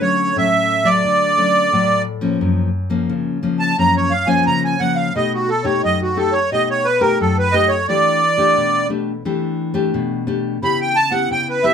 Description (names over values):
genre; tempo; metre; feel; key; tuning
samba; 88 BPM; 4/4; straight; unclear; A4 = 440 Hz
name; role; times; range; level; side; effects
accordion; melody; 0.0-11.7 s; F#4 to B5; -15 LUFS; right 2 dB; light tremolo tuning
nylon-string guitar; accompaniment; 0.0-11.7 s; F#2 to G4; -19 LUFS; left 4 dB; none
room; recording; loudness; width
moderate small room ambience, RT60 0.5 s; none; -15 LUFS; side -7 dB against mid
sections
0.0-2.4 A section; 2.4-11.7 B section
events
accordion solo 2.4-11.7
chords
0.0 Dmaj7; 2.4 F#maj7; 5.2 B7b13; 7.9 Em7; 10.6 C#m7b5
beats
0.36 1.04 1.73 | 2.41 3.10 3.78 4.46 | 5.15 5.83 6.52 7.20 | 7.89 8.57 9.26 9.94 | 10.62 11.31